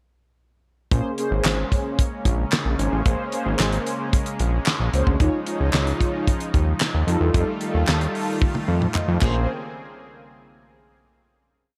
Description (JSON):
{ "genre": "early-eighties boogie funk", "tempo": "112 BPM", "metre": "4/4", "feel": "straight", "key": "Bb dorian", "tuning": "A4 = 440 Hz", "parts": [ { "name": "mellow synth brass", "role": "accompaniment", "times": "0.9-9.5 s", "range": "G3 to Eb5", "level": "-29 LUFS", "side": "equal", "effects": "chorus, phaser" }, { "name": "lush unison pad", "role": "sustained chords", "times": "0.9-9.5 s", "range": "Db3 to Ab4", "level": "-32 LUFS", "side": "equal", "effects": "chorus" }, { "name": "fat analog bass", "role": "bass", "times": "0.9-9.5 s", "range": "Ab1 to F2", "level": "-24 LUFS", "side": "equal", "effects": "none" }, { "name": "damped 70s drum kit", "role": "drums", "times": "0.9-9.3 s", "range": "crash cymbal, handclaps, hi-hat, kick drum, snare drum, toms", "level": "-25 LUFS", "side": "equal", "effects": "none" }, { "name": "group handclap", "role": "percussion", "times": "1.4-9.5 s", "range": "none", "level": "-33 LUFS", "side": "equal", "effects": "none" } ], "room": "little or no reverb", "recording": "faint mains hum", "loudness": "-22 LUFS", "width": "mono", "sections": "0.9-9.5 verse; 9.5-11.6 final hit", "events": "drum fill 8.4-9.5", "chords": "0.9 Bbm9; 5.2 Eb9sus4; 7.1 F9; 9.2 Bbm9; 9.5 N.C." }